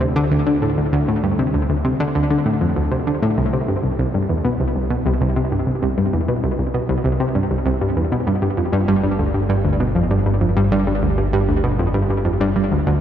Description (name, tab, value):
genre	ambient, sequencer-driven space music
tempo	98 BPM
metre	4/4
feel	straight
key	unclear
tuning	A4 = 441 Hz
part	analog pluck	riff	0.0-12.9 s	C2 to D3	-17 LUFS	equal	chorus, tape echo
part	fat analog bass	bass	0.0-13.0 s	G1 to D2	-27 LUFS	equal	none
room	wet cathedral reverb, RT60 5.8 s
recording	in a vast, echoing space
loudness	-17 LUFS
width	side -10 dB against mid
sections	0.0-13.0 A section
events	fade-in on analog synth bass 0.0-13.0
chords	0.0 D5; 3.4 C; 8.3 G5